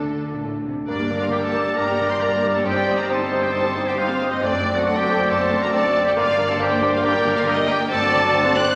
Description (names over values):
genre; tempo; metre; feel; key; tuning
classical, dramatic, fast romantic movement for symphony orchestra; 137 BPM; 4/4; rubato; G minor; A4 = 441 Hz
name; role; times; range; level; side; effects
rich symphonic violin section; melody; 0.0-8.8 s; A4 to F#6; -29 LUFS; equal; none
warm symphonic violin section; second line; 0.0-8.8 s; G4 to D5; -29 LUFS; equal; none
warm studio viola section; accompaniment; 0.0-8.8 s; G3 to G4; -30 LUFS; equal; none
dark French horn section; sustained chords; 0.0-8.7 s; A3 to Bb4; -34 LUFS; equal; none
concert harp; arpeggios; 0.0-8.8 s; F#2 to Eb5; -33 LUFS; equal; none
rich chamber double bass section; bass; 0.0-8.8 s; F#1 to D2; -37 LUFS; equal; none
rich symphonic cello section; bass; 0.0-8.8 s; F#2 to D3; -37 LUFS; equal; none
flute section; second line; 0.9-8.6 s; D6 to Eb6; -34 LUFS; equal; none
warm oboe; second line; 0.9-8.8 s; D4 to F#5; -29 LUFS; equal; none
mellow bassoon; accompaniment; 0.9-8.7 s; Bb3 to C4; -31 LUFS; equal; none
clear trombone section; sustained chords; 0.9-8.7 s; D3 to A3; -36 LUFS; equal; none
warm trumpet; stabs; 0.9-8.7 s; C5 to D5; -25 LUFS; equal; none
room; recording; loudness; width
wet scoring stage reverb, RT60 1.5 s; none; -20 LUFS; mono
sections
0.9-8.8 A section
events
none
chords
0.0 D5; 0.9 Gm; 2.6 Cm/G; 4.4 D7/F#; 6.2 Gm; 7.9 D7/G